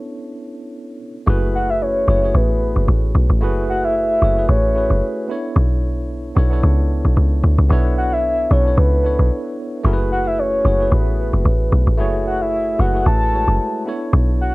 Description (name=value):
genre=amapiano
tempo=112 BPM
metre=4/4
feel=swing 55% on 16ths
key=F# minor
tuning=A4 = 441 Hz
part: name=tine electric piano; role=accompaniment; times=0.0-14.5 s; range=G#3 to C#5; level=-24 LUFS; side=right 1 dB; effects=fast stereo tremolo
part: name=deep log drum bass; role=bass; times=1.3-14.5 s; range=F#1 to D2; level=-16 LUFS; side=equal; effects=none
part: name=soft octave-layered synth lead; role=melody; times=1.6-14.5 s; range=B4 to A5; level=-20 LUFS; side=left 1 dB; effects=chorus, tremolo, cassette tape
room=light reverb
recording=home recording on cassette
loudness=-15 LUFS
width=side -21 dB against mid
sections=0.0-1.3 A section; 1.3-14.5 B section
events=filter sweep on tine electric piano 0.0-1.3; drop 1.3-14.5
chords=0.0 Bm11; 1.3 F#m11; 5.3 Bm11; 9.8 F#m11; 13.9 Bm11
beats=0.20 0.74 | 1.28 1.81 2.35 2.88 | 3.42 3.96 4.49 5.03 | 5.56 6.10 6.63 7.17 | 7.71 8.24 8.78 9.31 | 9.85 10.38 10.92 11.46 | 11.99 12.53 13.06 13.60 | 14.13